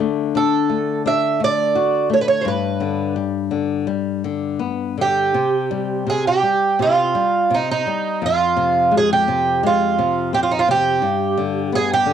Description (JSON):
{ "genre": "fado", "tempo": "85 BPM", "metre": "4/4", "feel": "rubato", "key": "C minor", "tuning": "A4 = 440 Hz", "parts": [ { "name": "flamenco guitar", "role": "accompaniment", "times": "0.0-12.1 s", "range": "F2 to F#4", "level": "-22 LUFS", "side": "left 9 dB", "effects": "cassette tape" }, { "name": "fingerpicked twelve-string acoustic guitar", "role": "melody", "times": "0.4-12.1 s", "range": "Eb4 to E5", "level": "-17 LUFS", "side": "right 4 dB", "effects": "cassette tape" } ], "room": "moderate studio reverb, RT60 0.5 s", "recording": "home recording on cassette", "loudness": "-16 LUFS", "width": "side -8 dB against mid", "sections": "0.0-12.1 A section", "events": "none", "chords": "0.0 D; 2.4 G; 5.3 C5; 8.2 Fm; 11.0 G", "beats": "0.34 1.04 1.74 | 2.44 3.15 3.87 4.60 | 5.33 6.06 6.79 7.51 | 8.22 8.92 9.62 10.33 | 11.02 11.71" }